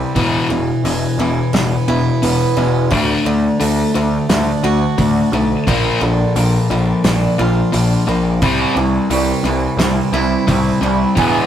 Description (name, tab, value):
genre	quiet-loud alternative rock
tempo	87 BPM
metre	4/4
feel	straight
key	unclear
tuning	A4 = 440 Hz
part	picked swing-style acoustic guitar	arpeggios	0.0-11.5 s	E2 to F#4	-21 LUFS	right 6 dB	none
part	sludgy distorted guitar	riff	0.0-11.5 s	E2 to D4	-16 LUFS	left 3 dB	overdrive
part	growling picked electric bass	bass	0.2-11.4 s	E1 to D2	-21 LUFS	equal	overdrive
part	loose indie drum kit	drums	0.2-11.3 s	hi-hat, kick drum, snare drum	-22 LUFS	right 1 dB	none
part	raw garage guitar	riff	8.4-11.5 s	C3 to C4	-18 LUFS	right 4 dB	overdrive, phaser
room	moderate small room ambience, RT60 0.5 s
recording	rough rehearsal-room recording, tube saturation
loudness	-13 LUFS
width	side -10 dB against mid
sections	0.0-11.5 A section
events	half time 0.0-11.5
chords	0.2 E; 2.9 D; 5.7 Bb; 8.4 C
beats	| 0.16 0.85 1.54 2.23 | 2.92 3.61 4.30 4.98 | 5.67 6.36 7.05 7.74 | 8.42 9.11 9.80 10.48 | 11.17